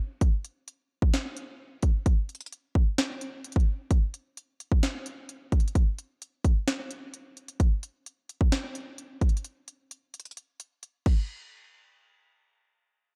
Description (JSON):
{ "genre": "hip hop", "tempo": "130 BPM", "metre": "4/4", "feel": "half-time", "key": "none", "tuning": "none", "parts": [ { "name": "trap drum kit", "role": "drums", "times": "0.2-11.2 s", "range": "crash cymbal, hi-hat, kick drum, snare drum", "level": "-28 LUFS", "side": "equal", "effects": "none" } ], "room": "little or no reverb", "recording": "dark, warm production", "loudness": "-28 LUFS", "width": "mono", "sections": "0.0-3.9 A section; 3.9-11.3 B section; 11.3-13.2 C section", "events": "none", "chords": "none" }